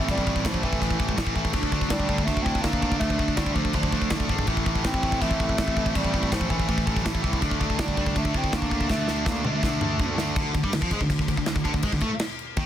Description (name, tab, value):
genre	heavy metal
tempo	163 BPM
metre	4/4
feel	straight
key	unclear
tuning	A4 = 440 Hz
part	breathy bass clarinet	melody	0.0-10.1 s	E3 to C4	-30 LUFS	equal	tape echo
part	high-gain lead guitar	second line	0.0-10.1 s	A3 to E4	-34 LUFS	right 5 dB	distortion
part	high-gain distorted guitar	riff	0.0-12.7 s	A2 to D4	-27 LUFS	equal	distortion
part	fuzz picked electric bass	bass	0.0-12.7 s	G#1 to A2	-30 LUFS	equal	overdrive
part	modern studio drum kit	drums	0.1-12.7 s	crash cymbal, kick drum, snare drum, toms	-27 LUFS	equal	soft clipping on snare
room	small room reverb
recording	dense, heavily limited modern master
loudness	-22 LUFS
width	side -11 dB against mid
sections	0.0-10.4 A section; 10.4-12.7 B section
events	drum fill 8.9-10.4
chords	0.0 Am; 1.5 Dm; 4.5 Am; 7.4 D5